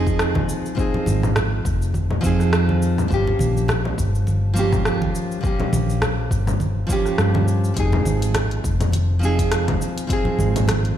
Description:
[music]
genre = sunset chillout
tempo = 103 BPM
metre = 4/4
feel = swing 56% on 16ths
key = F minor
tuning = A4 = 440 Hz
[part]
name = nylon-string guitar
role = accompaniment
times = 0.0-11.0 s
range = F3 to Ab4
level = -23 LUFS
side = moving between left 3 dB and right 4 dB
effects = auto-pan, tape echo
[part]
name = woody fretless electric bass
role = bass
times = 0.0-10.9 s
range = F1 to G2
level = -20 LUFS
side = equal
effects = none
[part]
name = deep house drum kit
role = drums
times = 0.1-10.9 s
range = cabasa, congas, hi-hat, rim click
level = -26 LUFS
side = left 1 dB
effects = overdrive
[part]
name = electronic kick drum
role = drums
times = 0.1-10.2 s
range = none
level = -25 LUFS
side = equal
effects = overdrive
[part]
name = congas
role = percussion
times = 0.4-10.8 s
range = none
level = -29 LUFS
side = right 3 dB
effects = none
[sound]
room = light reverb, digital ambience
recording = played on a big sound system in a bare room, large studio reverb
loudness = -18 LUFS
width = side -10 dB against mid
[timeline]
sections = 0.0-11.0 A section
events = none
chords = 0.0 Fm7; 3.1 Gm7b5; 7.8 Fm7

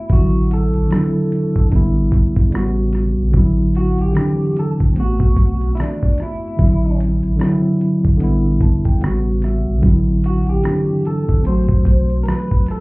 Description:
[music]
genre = lo-fi hip hop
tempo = 74 BPM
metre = 4/4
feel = swing 58% on 16ths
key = A dorian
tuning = A4 = 440 Hz
[part]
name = electric guitar through a small old amp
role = melody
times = 0.0-12.8 s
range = D4 to C5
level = -26 LUFS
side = equal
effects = wide subtle chorus, low-pass filter, tape echo
[part]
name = tine electric piano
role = accompaniment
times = 0.0-12.8 s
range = C#3 to A5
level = -18 LUFS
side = equal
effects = overdrive, fast stereo tremolo, cassette tape, low-pass filter
[part]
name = saturated sub bass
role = bass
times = 0.1-12.2 s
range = G1 to B1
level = -18 LUFS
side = equal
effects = none
[part]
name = dusty soul sampler-style drum kit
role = drums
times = 0.1-12.8 s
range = hi-hat, kick drum, rim click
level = -16 LUFS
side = equal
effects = vintage 12-bit sampler grit
[sound]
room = light reverb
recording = heard muffled through a wall, club reverb, vinyl crackle, EQ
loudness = -14 LUFS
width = side -24 dB against mid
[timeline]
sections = 0.0-12.8 A section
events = tine electric piano fill 8.2-9.8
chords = 0.1 D9/A; 1.7 Em7/A; 2.5 A13; 3.3 D9/A; 5.0 Am69; 6.6 D9/A; 8.2 Em7/A; 9.0 A13; 9.8 D9/A; 11.5 Am69

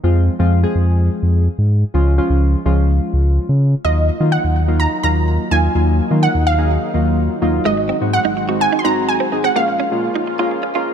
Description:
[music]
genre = pop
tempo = 126 BPM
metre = 4/4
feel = straight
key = Eb dorian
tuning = A4 = 440 Hz
[part]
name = warm analog keys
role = accompaniment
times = 0.0-10.9 s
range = F3 to Ab4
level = -20 LUFS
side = left 1 dB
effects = chorus
[part]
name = sub bass with octave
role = bass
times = 0.0-10.9 s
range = Ab1 to Eb3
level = -16 LUFS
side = equal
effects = none
[part]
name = wide unison pluck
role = melody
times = 3.8-10.9 s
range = Eb5 to C6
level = -19 LUFS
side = right 2 dB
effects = tape echo
[part]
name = lush unison pad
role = sustained chords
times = 3.8-10.9 s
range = Db3 to Gb4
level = -25 LUFS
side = equal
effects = chorus
[part]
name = direct-recorded clean electric guitar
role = riff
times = 7.7-10.8 s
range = Ab3 to Gb4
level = -23 LUFS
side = right 9 dB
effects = analog chorus
[sound]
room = light reverb, digital ambience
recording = dark, warm production, high-pass filter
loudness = -14 LUFS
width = side -8 dB against mid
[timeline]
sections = 0.0-3.8 A section; 3.8-10.9 B section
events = build-up 3.8-10.9; filter sweep 3.8-10.9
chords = 0.0 Fm; 1.9 Db; 3.8 Ebmadd9; 7.7 Ab7; 9.6 Bbm7

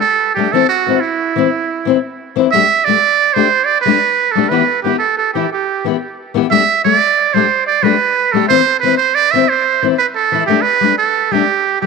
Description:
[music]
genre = highlife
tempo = 120 BPM (dotted quarters)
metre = 12/8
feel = straight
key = G major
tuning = A4 = 440 Hz
[part]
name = trumpet with metal mute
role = melody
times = 0.0-11.9 s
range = E4 to E5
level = -13 LUFS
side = right 9 dB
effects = tape echo
[part]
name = fingerpicked steel-string acoustic guitar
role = accompaniment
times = 0.4-11.9 s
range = E3 to G4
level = -15 LUFS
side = left 13 dB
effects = none
[sound]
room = moderate spring reverb, RT60 1.9 s, small room ambience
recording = 1960s-style stereo with parts hard left and right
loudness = -11 LUFS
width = side -4 dB against mid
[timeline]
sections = 0.0-11.9 A section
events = none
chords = 0.0 Gsus2; 0.5 Am/E (rootless); 2.5 Gsus2; 4.5 Em; 6.5 Gsus2; 8.5 Am (rootless); 10.5 Gsus2

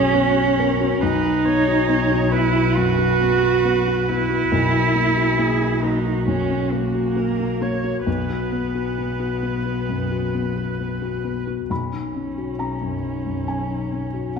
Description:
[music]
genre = neoclassical piano and strings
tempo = 68 BPM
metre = 4/4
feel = rubato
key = B major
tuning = A4 = 438 Hz
[part]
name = muted cello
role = second line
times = 0.0-14.4 s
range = A#3 to F#4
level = -22 LUFS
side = right 5 dB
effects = none
[part]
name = felt-muted upright piano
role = accompaniment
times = 0.0-14.4 s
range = B1 to B5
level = -24 LUFS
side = left 4 dB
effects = none
[part]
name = muted viola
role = accompaniment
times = 0.0-11.5 s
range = F#4 to C#5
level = -27 LUFS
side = right 3 dB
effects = none
[part]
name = muted double bass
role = bass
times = 0.0-14.4 s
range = B1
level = -26 LUFS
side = left 2 dB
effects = none
[sound]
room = wet scoring stage reverb, RT60 1.6 s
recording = recorded in a church or concert hall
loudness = -18 LUFS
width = side -6 dB against mid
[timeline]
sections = 0.0-11.7 A section; 11.7-14.4 B section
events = none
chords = 0.0 Badd9; 4.5 F#/B; 8.1 B5; 11.7 Badd9

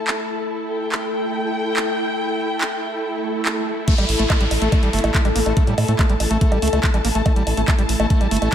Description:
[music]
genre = psychedelic trance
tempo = 142 BPM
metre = 4/4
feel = straight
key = unclear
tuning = A4 = 440 Hz
[part]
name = evolving wavetable pad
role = sustained chords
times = 0.0-8.5 s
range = A3 to A4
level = -26 LUFS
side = left 2 dB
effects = chorus, built-in reverb, sidechain pumping
[part]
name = dark symphonic string section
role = texture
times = 0.0-8.5 s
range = E4 to A5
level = -25 LUFS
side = equal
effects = sidechain pumping
[part]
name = drum and bass drum kit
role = drums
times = 0.1-8.5 s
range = bongos, crash cymbal, handclaps, hi-hat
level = -25 LUFS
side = right 1 dB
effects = studio reverb
[part]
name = swell and downlifter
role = sound effects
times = 3.2-7.3 s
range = none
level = -29 LUFS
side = equal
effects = none
[part]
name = overdriven acid bass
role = riff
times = 3.9-8.5 s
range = G3 to Bb3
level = -24 LUFS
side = equal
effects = distortion, auto-pan, sidechain pumping, tape echo
[part]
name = electronic kick drum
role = drums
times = 3.9-8.5 s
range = none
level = -17 LUFS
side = equal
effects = studio reverb
[part]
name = round analog bass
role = bass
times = 4.0-8.5 s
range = G1 to A2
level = -21 LUFS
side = equal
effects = none
[sound]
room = light reverb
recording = none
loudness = -17 LUFS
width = side -10 dB against mid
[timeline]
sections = 0.0-3.9 A section; 3.9-8.5 B section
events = swell 3.2-3.9; drop 3.9-8.5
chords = 0.0 A5

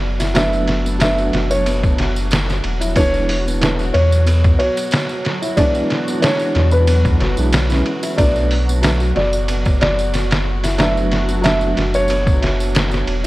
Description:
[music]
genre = trip hop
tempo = 92 BPM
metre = 4/4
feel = swing 54% on 16ths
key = B dorian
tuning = A4 = 439 Hz
[part]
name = felt-muted upright piano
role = arpeggios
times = 0.0-13.3 s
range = B2 to F#4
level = -26 LUFS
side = left 2 dB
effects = ping-pong delay
[part]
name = warm sub bass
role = bass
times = 0.0-13.3 s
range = E1 to E2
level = -18 LUFS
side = equal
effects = none
[part]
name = backwards swelling texture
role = texture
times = 0.0-13.3 s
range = F#3 to F#4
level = -29 LUFS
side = right 2 dB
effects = built-in reverb
[part]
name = trip hop sampler-style drum kit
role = drums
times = 0.2-13.3 s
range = hi-hat, kick drum, ride cymbal, snare drum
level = -20 LUFS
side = equal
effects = none
[part]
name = tambourine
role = percussion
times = 0.2-13.3 s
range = none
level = -33 LUFS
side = right 2 dB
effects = none
[part]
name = warm upright piano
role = accompaniment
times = 0.3-13.3 s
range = E3 to D4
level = -22 LUFS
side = right 1 dB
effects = tremolo
[part]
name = felt-muted upright piano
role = melody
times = 0.4-13.3 s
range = B4 to E5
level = -21 LUFS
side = equal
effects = tape echo
[sound]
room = light reverb, small room ambience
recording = worn, warbling old tape, cassette tape, warbly pitch drift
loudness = -14 LUFS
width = side -18 dB against mid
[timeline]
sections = 0.0-13.3 A section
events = none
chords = 0.0 Bm7; 3.0 E7; 8.2 Bm7

